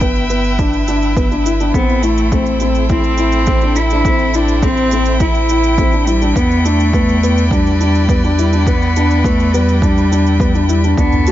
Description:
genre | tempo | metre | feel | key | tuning
piano and strings electronica | 104 BPM | 4/4 | straight | unclear | A4 = 440 Hz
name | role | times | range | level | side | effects
warm string quartet | sustained chords | 0.0-11.3 s | E4 to A5 | -23 LUFS | equal | sidechain pumping
felt-muted upright piano | riff | 0.0-11.3 s | B3 to F#4 | -17 LUFS | left 2 dB | ping-pong delay
warm sub bass | bass | 0.0-11.3 s | G1 to E2 | -16 LUFS | right 1 dB | sidechain pumping
electronic kick drum | drums | 0.0-11.1 s | none | -17 LUFS | equal | none
electronic shaker and toms | drums | 0.0-11.3 s | none | -28 LUFS | right 5 dB | none
dark cello | melody | 1.7-11.3 s | G3 to E4 | -17 LUFS | equal | none
room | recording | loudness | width
small room ambience | nothing above 7.5 kHz | -11 LUFS | side -13 dB against mid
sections
0.0-11.3 A section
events
none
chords
0.0 G6; 1.7 Am7; 6.4 Em7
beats
0.02 0.60 1.17 | 1.75 2.33 2.90 3.48 | 4.06 4.63 5.21 5.79 | 6.37 6.94 7.52 8.10 | 8.67 9.25 9.83 10.40 | 10.98

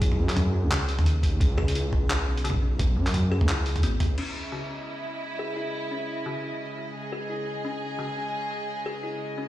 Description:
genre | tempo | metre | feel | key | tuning
half-time drum and bass | 173 BPM | 4/4 | swing 57% on 16ths, half-time | C# minor | A4 = 440 Hz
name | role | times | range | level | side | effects
buzzing kalimba | arpeggios | 0.0-9.5 s | C#3 to G#4 | -34 LUFS | left 3 dB | low-pass filter, tape echo
dark detuned saw bass | bass | 0.0-4.2 s | G#1 to F#2 | -25 LUFS | equal | none
boom bap sampler-style drum kit | drums | 0.0-4.3 s | crash cymbal, handclaps, hi-hat, toms | -29 LUFS | equal | none
electronic kick drum | drums | 0.0-2.9 s | none | -25 LUFS | equal | none
clear studio string section | sustained chords | 4.2-9.5 s | C#3 to D#5 | -32 LUFS | right 1 dB | vintage 12-bit sampler grit, sidechain pumping
room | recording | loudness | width
light reverb | played on a big sound system in a bare room, stone room reverb | -25 LUFS | side -14 dB against mid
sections
0.0-4.2 A section; 4.2-9.5 B section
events
drop 0.0-4.2; kick drops out 3.8-4.2; filter sweep on kalimba 4.2-9.5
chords
0.0 C#madd9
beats
| 0.02 0.36 0.71 1.06 | 1.40 1.75 2.10 2.44 | 2.79 3.14 3.48 3.83 | 4.18 4.53 4.87 5.22 | 5.57 5.91 6.26 6.61 | 6.95 7.30 7.65 7.99 | 8.34 8.69 9.03 9.38

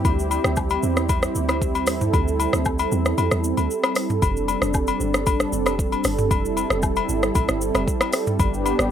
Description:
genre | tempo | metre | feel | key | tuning
amapiano | 115 BPM | 4/4 | straight | unclear | A4 = 439 Hz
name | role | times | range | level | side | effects
warm analog pad | sustained chords | 0.0-8.9 s | G3 to A4 | -24 LUFS | right 2 dB | chorus, sidechain pumping
deep log drum bass | bass | 0.0-8.9 s | F1 to F2 | -26 LUFS | equal | none
afro-pop drum kit | drums | 0.0-8.9 s | hi-hat, kick drum, rim click, shaker, toms | -23 LUFS | equal | none
agogo bells and woodblock | percussion | 0.0-8.8 s | none | -27 LUFS | left 9 dB | none
room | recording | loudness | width
moderate studio reverb, RT60 0.6 s | rough home demo mix | -19 LUFS | side -9 dB against mid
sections
0.0-8.9 A section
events
kick muted 3.2-4.2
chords
0.0 D9sus4; 4.2 F6; 8.4 G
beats
| 0.05 0.57 1.09 1.61 | 2.13 2.66 3.18 3.70 | 4.22 4.74 5.27 5.79 | 6.31 6.83 7.35 7.87 | 8.40

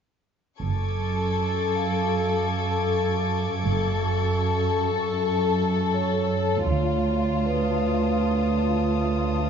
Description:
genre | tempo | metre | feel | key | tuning
cinematic, suspense film score | 79 BPM | 4/4 | straight | F# harmonic minor | A4 = 440 Hz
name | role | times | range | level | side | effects
dark studio violin section | melody | 0.6-9.5 s | F4 to A4 | -26 LUFS | left 4 dB | none
dark studio double bass section | bass | 0.6-7.4 s | F#1 to D2 | -28 LUFS | right 3 dB | none
warm studio cello section | bass | 0.6-9.5 s | D2 to F#2 | -25 LUFS | right 3 dB | none
dark chamber violin section | texture | 0.6-9.5 s | A5 to G#6 | -35 LUFS | left 4 dB | none
vibraphone with medium mallets | texture | 1.8-9.5 s | B4 to E#5 | -32 LUFS | right 2 dB | none
room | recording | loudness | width
moderate scoring stage reverb, RT60 1.6 s | dark, warm production, nothing above 7.6 kHz | -22 LUFS | side -7 dB against mid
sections
0.6-9.5 A section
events
none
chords
0.6 F#madd9; 6.7 Dm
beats
| 0.60 1.36 2.12 2.88 | 3.64 4.40 5.16 5.92 | 6.68 7.44 8.20 8.96

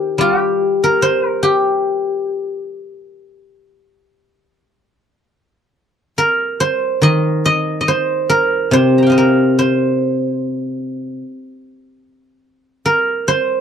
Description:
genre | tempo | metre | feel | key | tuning
chinese traditional, Chinese solo plucked strings | 71 BPM | 4/4 | uneven beats, rubato | unclear | A4 = 441 Hz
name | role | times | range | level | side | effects
guzheng | solo | 0.0-13.6 s | C3 to Bb5 | -14 LUFS | equal | none
room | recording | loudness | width
little or no reverb | dry, close 1970s-style studio recording | -14 LUFS | side -8 dB against mid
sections
0.0-5.3 A section; 5.3-13.6 B section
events
none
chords
none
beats
0.21 1.03 | 1.85 2.68 3.53 4.42 | 5.31 6.18 7.04 7.88 | 8.72 9.56 10.39 11.21 | 12.01 12.82

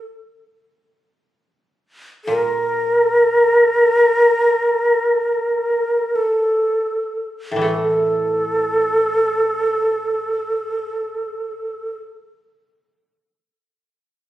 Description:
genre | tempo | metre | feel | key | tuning
japanese traditional, Japanese chamber music | free time | none | none | unclear | A4 = 440 Hz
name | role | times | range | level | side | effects
breathy shakuhachi | melody | 2.2-12.0 s | A4 to Bb4 | -16 LUFS | equal | none
koto | accompaniment | 2.3-12.0 s | A2 to A3 | -25 LUFS | left 1 dB | none
room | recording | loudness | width
light reverb | recorded on a phone in the room, studio reverb | -16 LUFS | side -14 dB against mid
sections
0.0-7.6 A section; 7.6-13.8 B section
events
slowing down 0.0-7.6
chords
none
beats
free time

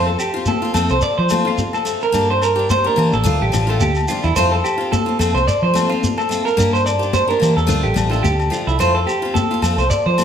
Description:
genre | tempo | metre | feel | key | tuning
highlife guitar band | 108 BPM | 4/4 | swing 55% on 16ths | F major | A4 = 438 Hz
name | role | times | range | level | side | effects
picked steel-string acoustic guitar | accompaniment | 0.0-10.2 s | F3 to G4 | -24 LUFS | left 5 dB | none
clean electric guitar | arpeggios | 0.0-10.2 s | E4 to D5 | -18 LUFS | right 2 dB | slapback echo
vintage muted fingered electric bass | bass | 0.0-10.2 s | A1 to F3 | -20 LUFS | equal | none
agogo bells | percussion | 0.2-10.2 s | none | -27 LUFS | left 5 dB | none
congas | percussion | 0.2-10.2 s | none | -26 LUFS | left 4 dB | none
shekere | percussion | 0.2-10.2 s | none | -25 LUFS | right 1 dB | none
room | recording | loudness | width
wet recital hall reverb, RT60 1.7 s | none | -15 LUFS | side -8 dB against mid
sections
0.0-10.2 A section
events
none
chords
0.0 F; 2.1 Gm; 3.3 Dm; 4.4 F; 6.6 Gm; 7.7 Dm; 8.8 F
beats
0.47 1.03 1.58 | 2.14 2.70 3.25 3.81 | 4.36 4.92 5.47 6.03 | 6.58 7.14 7.69 8.25 | 8.80 9.36 9.91

